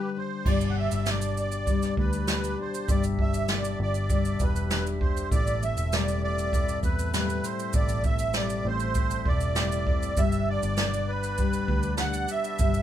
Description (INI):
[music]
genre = acoustic pop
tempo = 99 BPM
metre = 4/4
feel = straight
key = G major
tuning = A4 = 440 Hz
[part]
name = musette accordion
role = melody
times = 0.0-12.8 s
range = G4 to F#5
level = -31 LUFS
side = right 2 dB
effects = none
[part]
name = fingerpicked steel-string acoustic guitar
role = accompaniment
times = 0.0-12.8 s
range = A2 to G4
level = -32 LUFS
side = left 7 dB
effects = none
[part]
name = tonewheel organ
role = sustained chords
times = 0.5-12.8 s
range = B2 to E5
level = -40 LUFS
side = right 1 dB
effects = slow rotary speaker
[part]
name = vintage muted fingered electric bass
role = bass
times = 0.5-12.8 s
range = E1 to E2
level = -30 LUFS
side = equal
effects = none
[part]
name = jazz brush drum kit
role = drums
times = 0.5-12.8 s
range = crash cymbal, kick drum, shaker, snare drum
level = -28 LUFS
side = right 1 dB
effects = none
[sound]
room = light reverb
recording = band playing live in one room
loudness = -24 LUFS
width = side -11 dB against mid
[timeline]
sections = 0.5-12.8 A section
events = break 0.0-0.5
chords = 0.5 G; 5.3 Am7; 10.2 G